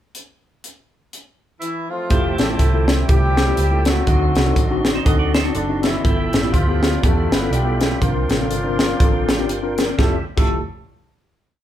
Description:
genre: uptempo gospel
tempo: 122 BPM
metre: 4/4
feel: swing 58% on 8ths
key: F major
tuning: A4 = 443 Hz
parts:
  - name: crisp fusion drum kit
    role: drums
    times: 0.1-10.5 s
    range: crash cymbal, hi-hat, kick drum, snare drum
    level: -19 LUFS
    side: equal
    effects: none
  - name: warm horn section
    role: melody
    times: 1.6-10.6 s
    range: D3 to B4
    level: -24 LUFS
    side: left 1 dB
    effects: none
  - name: tine electric piano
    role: accompaniment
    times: 2.1-10.6 s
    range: F2 to Bb4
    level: -23 LUFS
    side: left 2 dB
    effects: fast stereo tremolo
  - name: percussive tonewheel organ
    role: sustained chords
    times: 2.1-10.2 s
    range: A3 to C6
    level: -30 LUFS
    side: right 3 dB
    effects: slow rotary speaker, overdrive, chorus vibrato
  - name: hollow-body short-scale fingered electric bass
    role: bass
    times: 2.1-10.6 s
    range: F1 to E2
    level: -21 LUFS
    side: right 1 dB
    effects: none
  - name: clean electric guitar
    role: second line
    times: 5.0-6.0 s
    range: C4 to Eb5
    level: -26 LUFS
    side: right 6 dB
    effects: none
room: moderate large studio reverb, RT60 0.8 s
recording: band playing live in one room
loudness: -16 LUFS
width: side -11 dB against mid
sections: 0.1-2.1 pickup bar; 2.1-10.0 breakdown; 10.0-11.6 final chord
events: none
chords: 0.1 N.C.; 2.1 Fmaj9; 4.1 D7b9; 6.0 G13; 8.0 C9sus4; 10.0 Fmaj9

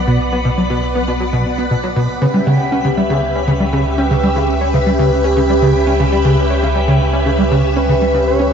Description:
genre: ambient, sequencer-driven space music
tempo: 119 BPM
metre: 4/4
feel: straight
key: unclear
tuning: A4 = 442 Hz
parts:
  - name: phased string machine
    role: sustained chords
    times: 0.0-8.5 s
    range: B3 to F#5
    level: -18 LUFS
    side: equal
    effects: ensemble chorus, phaser
  - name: warm sub bass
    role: bass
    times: 0.0-8.5 s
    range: B1 to C#2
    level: -20 LUFS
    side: equal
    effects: none
  - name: twinkling granular texture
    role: texture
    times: 0.0-8.5 s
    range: B5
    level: -29 LUFS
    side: equal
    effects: built-in reverb
  - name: plucky analog bass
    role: riff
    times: 0.1-8.5 s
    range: B2 to C#4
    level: -16 LUFS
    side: equal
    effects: lush chorus, ping-pong delay
  - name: pulse-width lead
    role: melody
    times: 2.2-8.5 s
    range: G4 to G5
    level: -20 LUFS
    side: equal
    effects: chorus, ping-pong delay
room: wet cathedral reverb, RT60 6.3 s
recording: in a vast, echoing space, cassette tape, nothing above 7.7 kHz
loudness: -12 LUFS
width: side -7 dB against mid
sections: 0.0-8.5 A section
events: none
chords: 0.0 Bm; 2.2 C#m7b5

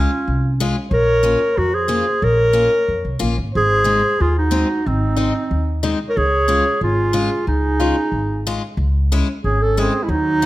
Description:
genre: alpine folk, alpine dance band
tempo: 92 BPM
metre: 2/4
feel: straight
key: Db major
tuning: A4 = 440 Hz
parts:
  - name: clear clarinet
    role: melody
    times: 0.0-10.5 s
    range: C4 to Bb4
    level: -18 LUFS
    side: right 1 dB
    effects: none
  - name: dark trumpet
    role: second line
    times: 0.0-10.5 s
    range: F#3 to Db5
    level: -26 LUFS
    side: right 2 dB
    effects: none
  - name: picked steel-string acoustic guitar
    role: accompaniment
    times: 0.0-10.5 s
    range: Ab3 to F#4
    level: -24 LUFS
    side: left 4 dB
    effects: none
  - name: upright bass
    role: bass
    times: 0.0-10.5 s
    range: Ab1 to F2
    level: -20 LUFS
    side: equal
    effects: none
room: light reverb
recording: none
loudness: -15 LUFS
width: side -16 dB against mid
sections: 0.0-8.8 A section; 8.8-10.5 B section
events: none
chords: 0.0 Db; 0.9 Bbm; 3.5 Ab; 6.2 Dbadd9; 8.8 C#m

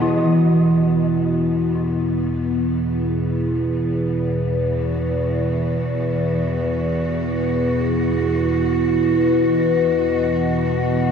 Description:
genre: dark ambient drone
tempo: free time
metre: none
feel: none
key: unclear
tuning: A4 = 440 Hz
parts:
  - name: clear studio cello section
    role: sustained chords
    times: 0.0-11.1 s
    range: E3 to F#4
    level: -30 LUFS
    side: equal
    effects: none
  - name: dark detuned synth bell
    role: arpeggios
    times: 0.0-11.1 s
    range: E4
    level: -27 LUFS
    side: left 4 dB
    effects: chorus, phaser, tape echo
  - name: overtone-sweeping drone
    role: drone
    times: 0.0-11.1 s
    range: E2 to B2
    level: -18 LUFS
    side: equal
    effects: chorus, built-in reverb
room: wet cathedral reverb, RT60 5.7 s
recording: in a vast, echoing space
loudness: -17 LUFS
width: side -7 dB against mid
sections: 0.0-11.1 A section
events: fade-in on cello section 0.0-11.1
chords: 0.0 E5

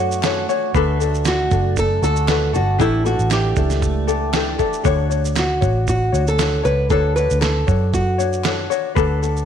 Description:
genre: acoustic pop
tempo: 117 BPM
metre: 4/4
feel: swing 55% on 16ths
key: D major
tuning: A4 = 439 Hz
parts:
  - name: nylon-string guitar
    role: melody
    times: 0.0-8.7 s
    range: E4 to B4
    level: -21 LUFS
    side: right 1 dB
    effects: none
  - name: ukulele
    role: accompaniment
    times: 0.0-9.4 s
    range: D4 to C#5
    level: -22 LUFS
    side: left 11 dB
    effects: none
  - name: direct-recorded clean electric guitar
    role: arpeggios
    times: 0.0-5.4 s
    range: E3 to G4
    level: -27 LUFS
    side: right 11 dB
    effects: analog chorus
  - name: vintage muted fingered electric bass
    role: bass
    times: 0.0-9.4 s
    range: F#1 to F#2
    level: -20 LUFS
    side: right 1 dB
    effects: none
  - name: dusty soul sampler-style drum kit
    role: drums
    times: 0.1-9.4 s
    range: kick drum, shaker, snare drum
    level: -24 LUFS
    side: right 4 dB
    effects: none
  - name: group handclap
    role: percussion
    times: 0.2-8.6 s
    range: none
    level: -34 LUFS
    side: left 10 dB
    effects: none
room: light reverb, small room ambience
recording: 1960s-style stereo with parts hard left and right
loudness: -16 LUFS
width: side -8 dB against mid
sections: 0.0-4.9 A section; 4.9-9.4 A section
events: none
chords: 0.0 Dmaj7; 0.7 Bm7; 2.8 A7sus4; 4.9 Dmaj7

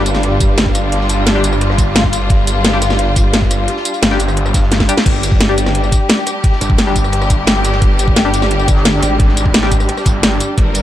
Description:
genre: dark technical drum and bass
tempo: 174 BPM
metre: 4/4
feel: straight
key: unclear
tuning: A4 = 439 Hz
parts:
  - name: rich studio string section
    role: sustained chords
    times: 0.0-10.8 s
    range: G3 to Bb4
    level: -19 LUFS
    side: left 1 dB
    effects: sidechain pumping
  - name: band-passed chord stab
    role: stabs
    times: 0.0-9.7 s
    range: G3 to G4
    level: -23 LUFS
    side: left 3 dB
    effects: none
  - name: snarling distorted saw bass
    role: bass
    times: 0.0-10.8 s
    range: G1 to Ab1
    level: -16 LUFS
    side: equal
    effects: distortion, overdrive
  - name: crunchy breakbeat drum kit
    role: drums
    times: 0.1-10.8 s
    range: ride cymbal, snare drum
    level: -30 LUFS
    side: right 1 dB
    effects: none
  - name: drum and bass drum kit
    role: drums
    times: 0.1-10.8 s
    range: crash cymbal, hi-hat, rim click, snare drum, tambourine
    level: -16 LUFS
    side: equal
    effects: none
  - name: electronic kick drum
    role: drums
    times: 0.4-10.6 s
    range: none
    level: -14 LUFS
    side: equal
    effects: none
  - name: metallic wobble bass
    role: bass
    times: 8.7-9.0 s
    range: G1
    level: -16 LUFS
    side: equal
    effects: chorus
room: light reverb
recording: dark, warm production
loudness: -11 LUFS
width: side -12 dB against mid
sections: 0.0-5.1 A section; 5.1-10.8 A section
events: drop 0.0-5.1, 5.1-10.8; drum fill 4.7-5.1; band accent 5.0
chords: 0.0 G5

